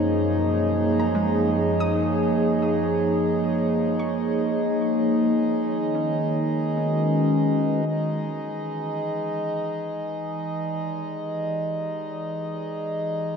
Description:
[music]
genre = ambient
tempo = free time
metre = none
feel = none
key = unclear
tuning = A4 = 439 Hz
[part]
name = warbly tape-like pad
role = sustained chords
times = 0.0-13.4 s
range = F#2 to D5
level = -23 LUFS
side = equal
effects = chorus, built-in reverb, shimmer reverb
[part]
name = pedal harmonium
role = drone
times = 0.0-13.4 s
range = G#3 to D#4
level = -28 LUFS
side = equal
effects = stereo widening
[part]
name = soft round pluck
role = arpeggios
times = 1.0-9.3 s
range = G#3 to D#6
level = -36 LUFS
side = right 2 dB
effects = chorus, tape echo, shimmer reverb
[sound]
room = wet cathedral reverb, RT60 5.2 s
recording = in a vast, echoing space, nothing above 10.6 kHz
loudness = -22 LUFS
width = side -6 dB against mid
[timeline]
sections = 0.0-7.9 A section; 7.9-13.4 B section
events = fade-out on synth pluck 0.0-7.9; fade-in on ambient pad 7.9-13.4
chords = 0.0 F#; 3.5 A#m7; 5.7 B; 7.9 Em

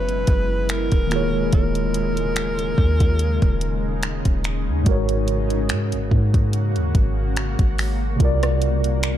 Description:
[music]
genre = contemporary R&B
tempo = 72 BPM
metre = 4/4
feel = swing 54% on 16ths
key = unclear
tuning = A4 = 440 Hz
[part]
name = breathy alto saxophone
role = melody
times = 0.0-4.4 s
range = Bb4 to Cb5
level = -27 LUFS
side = equal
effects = digital delay
[part]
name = mellow tine electric piano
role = accompaniment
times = 0.0-9.2 s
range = Ab2 to D5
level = -25 LUFS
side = right 1 dB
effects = medium stereo tremolo
[part]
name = granular cloud pad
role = sustained chords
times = 0.0-9.2 s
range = Cb3 to Gb4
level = -28 LUFS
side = left 1 dB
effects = built-in reverb, sidechain pumping
[part]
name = soft 808-style bass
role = bass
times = 0.0-9.2 s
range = Eb1 to Ab2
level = -22 LUFS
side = equal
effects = none
[part]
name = smooth R&B drum kit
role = drums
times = 0.1-9.2 s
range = finger snaps, hi-hat, kick drum, rim click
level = -21 LUFS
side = equal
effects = none
[sound]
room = little or no reverb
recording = dark, warm production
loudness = -18 LUFS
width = side -11 dB against mid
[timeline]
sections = 0.0-9.2 A section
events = none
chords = 0.0 Gb9sus4; 1.1 Eb9sus4; 4.9 Ab9sus4; 8.2 C9sus4

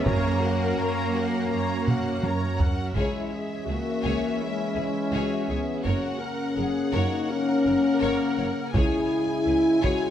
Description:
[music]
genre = cinematic, epic orchestral film score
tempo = 83 BPM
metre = 4/4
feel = straight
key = C# dorian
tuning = A4 = 440 Hz
[part]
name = warm symphonic violin section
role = melody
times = 0.0-10.1 s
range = E5 to A#5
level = -34 LUFS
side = left 4 dB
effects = none
[part]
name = rich symphonic violin section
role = second line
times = 0.0-10.1 s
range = G#4 to C#5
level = -34 LUFS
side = left 3 dB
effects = none
[part]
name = rich symphonic viola section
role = accompaniment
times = 0.0-10.1 s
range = E4 to C#5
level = -35 LUFS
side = equal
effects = none
[part]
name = bright trombone section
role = sustained chords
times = 0.0-10.1 s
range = C#3 to C#4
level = -32 LUFS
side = right 3 dB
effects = none
[part]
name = mellow French horn section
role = sustained chords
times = 0.0-10.1 s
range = F#3 to F#4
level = -26 LUFS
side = left 2 dB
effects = none
[part]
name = clear symphonic cello section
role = bass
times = 0.0-9.9 s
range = C#2 to A#3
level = -31 LUFS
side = right 1 dB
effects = none
[part]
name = rich symphonic double bass section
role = bass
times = 0.1-9.9 s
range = F#1 to F#2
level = -31 LUFS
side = right 3 dB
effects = none
[part]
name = taiko ensemble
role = drums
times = 0.1-4.4, 8.7-10.1 s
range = none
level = -27 LUFS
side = equal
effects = none
[sound]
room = moderate concert hall reverb, RT60 2.2 s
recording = none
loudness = -23 LUFS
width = side -10 dB against mid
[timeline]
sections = 0.0-3.0 A section; 3.0-10.1 B section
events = drum fill 1.9-3.0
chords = 0.1 F#; 3.0 C#m; 5.9 F#; 8.7 C#m

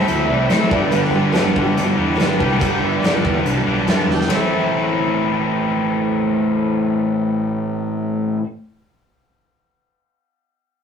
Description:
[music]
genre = classic rock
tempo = 142 BPM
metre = 4/4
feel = straight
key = A minor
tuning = A4 = 435 Hz
[part]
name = picked steel-string acoustic guitar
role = accompaniment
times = 0.0-8.5 s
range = G2 to A4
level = -24 LUFS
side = right 2 dB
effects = none
[part]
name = string machine, full ensemble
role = sustained chords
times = 0.0-4.3 s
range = B4 to D6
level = -26 LUFS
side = right 2 dB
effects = ensemble chorus
[part]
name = cranked stack guitar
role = riff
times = 0.0-8.5 s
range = G2 to A4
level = -21 LUFS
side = left 6 dB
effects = overdrive
[part]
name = crunchy overdriven guitar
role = riff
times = 0.0-8.5 s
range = G2 to A4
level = -22 LUFS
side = right 3 dB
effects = none
[part]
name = fuzz fingered electric bass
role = bass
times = 0.0-8.4 s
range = G1 to A2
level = -24 LUFS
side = equal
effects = overdrive
[part]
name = big rock drum kit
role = drums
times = 0.0-4.4 s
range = hi-hat, kick drum, ride cymbal, snare drum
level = -22 LUFS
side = equal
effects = none
[sound]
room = wet studio reverb, RT60 0.5 s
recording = rough rehearsal-room recording, tube saturation, small room ambience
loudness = -16 LUFS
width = side -7 dB against mid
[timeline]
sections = 0.0-4.3 A section; 4.3-7.7 B section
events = drum fill 4.1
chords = 0.0 Am; 0.7 G; 4.3 Am

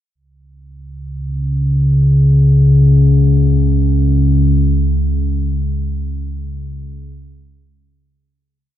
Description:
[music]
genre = ambient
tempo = free time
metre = none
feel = none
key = unclear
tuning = A4 = 440 Hz
[part]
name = deep rumbling drone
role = solo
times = 1.1-8.8 s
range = C#2 to C#3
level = -12 LUFS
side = left 1 dB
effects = built-in reverb
[sound]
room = moderate huge ambient reverb, RT60 9.3 s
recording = none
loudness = -11 LUFS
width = side -11 dB against mid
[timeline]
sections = 0.1-8.8 A section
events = fade-out 4.5-8.8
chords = none

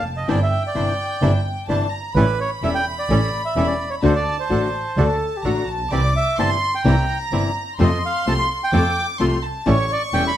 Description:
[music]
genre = tango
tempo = 128 BPM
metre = 4/4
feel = rubato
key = unclear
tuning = A4 = 440 Hz
[part]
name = bandoneon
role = melody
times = 0.0-10.4 s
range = B4 to C6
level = -23 LUFS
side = right 3 dB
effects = plate reverb
[part]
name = warm studio violin section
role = second line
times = 0.0-10.4 s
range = G5 to D6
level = -26 LUFS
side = left 2 dB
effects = none
[part]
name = warm double bass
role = bass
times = 0.0-10.3 s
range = E1 to F2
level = -21 LUFS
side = right 1 dB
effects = none
[part]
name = flamenco guitar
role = accompaniment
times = 0.3-10.3 s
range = C3 to F#4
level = -23 LUFS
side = left 4 dB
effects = none
[part]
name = bandoneon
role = stabs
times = 0.3-10.3 s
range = C4 to C5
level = -32 LUFS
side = right 4 dB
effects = none
[part]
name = mellow concert flute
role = second line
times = 5.0-5.8 s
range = F#4 to A4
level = -26 LUFS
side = equal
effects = none
[sound]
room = light reverb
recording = none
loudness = -18 LUFS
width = side -11 dB against mid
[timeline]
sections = 0.0-10.4 A section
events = none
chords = 0.3 Cadd9/G; 2.2 A7; 4.0 D; 5.9 C; 7.8 F; 9.7 A7

